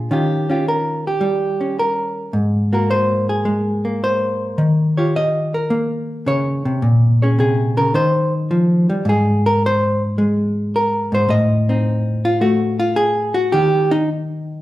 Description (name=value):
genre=solo jazz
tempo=107 BPM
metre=4/4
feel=swing 69% on 8ths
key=Eb mixolydian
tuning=A4 = 440 Hz
part: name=hollow-body jazz guitar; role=solo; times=0.0-14.6 s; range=Ab2 to Eb5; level=-15 LUFS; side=equal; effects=none
room=wet large studio reverb, RT60 1.0 s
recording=band playing live in one room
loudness=-15 LUFS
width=side -16 dB against mid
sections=0.1-14.6 A section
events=hollow-body jazz guitar solo 0.1-14.6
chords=0.1 Eb9; 2.3 Ab9; 4.6 Eb9; 6.8 Bbm7; 7.9 Ebadd9; 9.0 N.C.; 11.3 Adim; 13.5 Eb